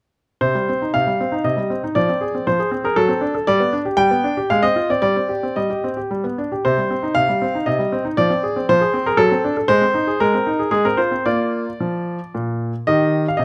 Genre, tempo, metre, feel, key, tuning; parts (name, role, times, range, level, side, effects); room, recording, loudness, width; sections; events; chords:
classical-period piano sonatina; 109-121 BPM; 3/4; rubato; C minor, Eb major from 9.7 s; A4 = 438 Hz
bright grand piano; solo; 0.4-13.4 s; Bb2 to G5; -19 LUFS; equal
light reverb; close, detailed microphones; -19 LUFS; mono
0.4-12.9 A section
0.4 Cm; 2.0 Fm; 3.0 D7/F#; 3.5 G; 4.5 Fm/Ab; 5.0 Cm/G; 6.1 G; 6.6 Cm; 8.2 Fm; 9.2 D7/F#; 9.7 Ab; 10.7 Fm/Ab; 11.3 Bb; 12.9 Eb